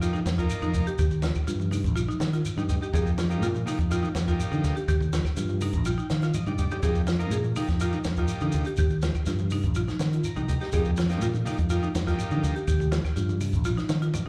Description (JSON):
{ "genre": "afrobeat", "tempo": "123 BPM", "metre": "4/4", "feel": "straight", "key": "unclear", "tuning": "A4 = 438 Hz", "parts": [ { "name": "combo organ", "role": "accompaniment", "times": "0.0-14.3 s", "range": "F3 to Bb5", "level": "-38 LUFS", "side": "equal", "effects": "slapback echo" }, { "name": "vibraphone with medium hard mallets", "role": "arpeggios", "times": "0.0-14.3 s", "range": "Eb4 to Ab4", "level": "-35 LUFS", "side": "equal", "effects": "slapback echo" }, { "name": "fingered electric bass", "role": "bass", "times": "0.0-14.3 s", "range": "Bb1 to Eb3", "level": "-29 LUFS", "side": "equal", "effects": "none" }, { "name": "compact cocktail drum kit", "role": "drums", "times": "0.0-14.3 s", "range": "hi-hat, kick drum, snare drum", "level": "-32 LUFS", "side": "equal", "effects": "none" }, { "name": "claves", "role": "percussion", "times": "0.0-14.3 s", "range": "none", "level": "-51 LUFS", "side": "equal", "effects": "none" }, { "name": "shekere", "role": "percussion", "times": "0.0-14.3 s", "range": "none", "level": "-40 LUFS", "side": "equal", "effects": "none" }, { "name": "congas", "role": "percussion", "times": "0.1-14.3 s", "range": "none", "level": "-37 LUFS", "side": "equal", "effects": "slapback echo" } ], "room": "small room reverb", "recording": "live gig heard through the venue's PA, club reverb", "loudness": "-26 LUFS", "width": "mono", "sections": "0.0-14.3 A section", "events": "transistor combo organ fill 5.4-6.8, 10.0-10.7; drum fill 6.1-6.8", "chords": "0.0 F7(no3); 1.0 Eb; 2.9 F7(no3); 4.9 Eb; 6.8 F7(no3); 8.8 Eb; 10.7 F7(no3); 12.7 Eb", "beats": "0.01 0.50 | 0.99 1.47 1.96 2.45 | 2.93 3.42 3.91 4.39 | 4.88 5.37 5.86 6.34 | 6.83 7.32 7.80 8.29 | 8.78 9.26 9.75 10.24 | 10.73 11.21 11.70 12.19 | 12.68 13.16 13.65 14.14" }